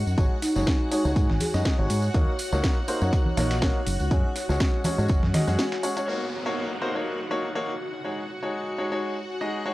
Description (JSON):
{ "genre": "piano house", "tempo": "122 BPM", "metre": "4/4", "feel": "swing 55% on 16ths", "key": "Eb minor", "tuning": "A4 = 440 Hz", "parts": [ { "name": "string machine, violins", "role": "sustained chords", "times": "0.0-9.7 s", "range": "Gb4 to Gb5", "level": "-36 LUFS", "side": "left 1 dB", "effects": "ensemble chorus, sidechain pumping" }, { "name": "fingered electric bass", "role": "bass", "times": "0.0-5.6 s", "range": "Gb1 to Eb3", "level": "-25 LUFS", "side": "equal", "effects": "sidechain pumping" }, { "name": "warbly tape-like pad", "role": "texture", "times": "0.0-9.7 s", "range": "Eb4 to Ab5", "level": "-36 LUFS", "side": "equal", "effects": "chorus, built-in reverb, phaser, sidechain pumping" }, { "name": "tambourine and congas", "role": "percussion", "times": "0.1-6.1 s", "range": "none", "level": "-33 LUFS", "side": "right 1 dB", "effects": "none" }, { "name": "bright concert grand piano", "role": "riff", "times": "0.2-9.7 s", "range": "Ab3 to Gb5", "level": "-29 LUFS", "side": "left 1 dB", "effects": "sidechain pumping, low-pass filter, tape echo" }, { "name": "dusty soul sampler-style drum kit", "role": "drums", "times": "0.2-6.1 s", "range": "hi-hat, snare drum", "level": "-38 LUFS", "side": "equal", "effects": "sidechain pumping on hats, high-pass filter on hats, high-pass filter on snare" }, { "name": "electronic kick drum", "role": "drums", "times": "0.2-5.2 s", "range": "none", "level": "-23 LUFS", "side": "equal", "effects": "none" }, { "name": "buzzing marimba with soft mallets", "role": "melody", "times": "0.4-2.1 s", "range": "Eb4 to Ab4", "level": "-29 LUFS", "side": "equal", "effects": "tape echo" }, { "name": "house drum kit", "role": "drums", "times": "0.4-9.7 s", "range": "hi-hat, shaker, snare drum", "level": "-32 LUFS", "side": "equal", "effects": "low-pass filter on hats, low-pass filter on snare, low-pass filter on perc" }, { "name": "downlifter", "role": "sound effects", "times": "6.1-9.7 s", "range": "none", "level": "-37 LUFS", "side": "right 1 dB", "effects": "none" } ], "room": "light reverb", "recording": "dry, gritty hardware recording", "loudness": "-23 LUFS", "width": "side -17 dB against mid", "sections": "0.0-6.1 A section; 6.1-9.7 B section", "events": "break 5.6-6.1", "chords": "0.0 Ab7sus4; 2.1 Ebm7; 3.9 Gbsus2; 6.1 Ebm7; 7.8 Ab7sus4" }